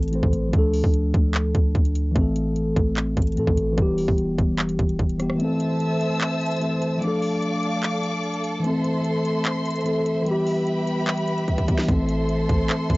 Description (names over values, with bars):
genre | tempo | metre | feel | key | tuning
hip hop, trap | 148 BPM | 4/4 | half-time | A minor | A4 = 437 Hz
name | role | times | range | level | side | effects
mellow tine electric piano | accompaniment | 0.0-13.0 s | E3 to C5 | -23 LUFS | left 1 dB | phaser, low-pass filter
clean 808-style bass | bass | 0.0-5.4, 11.9-13.0 s | D1 to A2 | -25 LUFS | equal | none
trap drum kit | drums | 0.0-13.0 s | handclaps, hi-hat, kick drum, rim click, snare drum | -23 LUFS | equal | none
warm symphonic string section | sustained chords | 5.4-13.0 s | G4 to E6 | -28 LUFS | right 1 dB | none
room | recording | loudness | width
light reverb | home recording on cassette, nothing above 7.7 kHz | -20 LUFS | side -22 dB against mid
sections
0.0-13.0 A section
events
break 5.4-11.9; drum fill 11.5-11.9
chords
0.0 Am; 0.5 Dm; 2.2 Am; 3.8 Em; 5.4 Am; 7.0 Dm; 8.6 Am; 10.3 Em; 11.9 Am